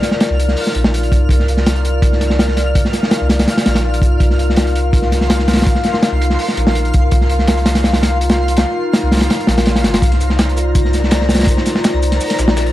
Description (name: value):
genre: drum and bass, jungle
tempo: 165 BPM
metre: 4/4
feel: straight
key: C minor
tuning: A4 = 441 Hz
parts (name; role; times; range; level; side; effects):
- warbly tape-like pad; sustained chords; 0.0-12.7 s; Eb4 to F5; -20 LUFS; left 2 dB; chorus, built-in reverb
- crunchy breakbeat drum kit; drums; 0.0-12.7 s; hi-hat, kick drum, snare drum; -14 LUFS; equal; none
- twinkling granular texture; texture; 0.0-12.7 s; Bb4 to F6; -27 LUFS; equal; built-in reverb
- soft dub sub bass; bass; 0.3-12.7 s; G1 to C2; -16 LUFS; equal; tube saturation
- dusty soul sampler-style drum kit; drums; 10.0-12.7 s; hi-hat, shaker, snare drum; -27 LUFS; equal; high-pass filter on perc, high-pass filter on hats, high-pass filter on snare, high-pass filter on room
room: small room ambience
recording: dry, gritty hardware recording, transformer saturation, vinyl crackle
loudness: -12 LUFS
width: side -14 dB against mid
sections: 0.0-12.7 A section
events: none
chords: 0.0 Cm11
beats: 0.21 0.57 0.93 | 1.30 1.66 2.02 2.39 | 2.75 3.12 3.48 3.84 | 4.21 4.57 4.93 5.30 | 5.66 6.02 6.39 6.75 | 7.12 7.48 7.84 8.21 | 8.57 8.93 9.30 9.66 | 10.02 10.39 10.75 11.12 | 11.48 11.84 12.21 12.57